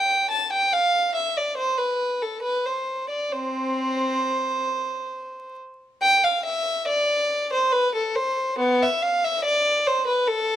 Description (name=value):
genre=classical, baroque-style suite movement for unaccompanied violin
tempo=69 BPM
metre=3/4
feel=uneven beats, rubato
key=C major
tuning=A4 = 440 Hz
part: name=warm violin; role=solo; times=0.0-10.6 s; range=B3 to A5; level=-21 LUFS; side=equal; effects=none
room=moderate stone room reverb, RT60 1.1 s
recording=vinyl crackle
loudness=-21 LUFS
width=side -11 dB against mid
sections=0.0-6.0 A section; 6.0-10.6 A section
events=none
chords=none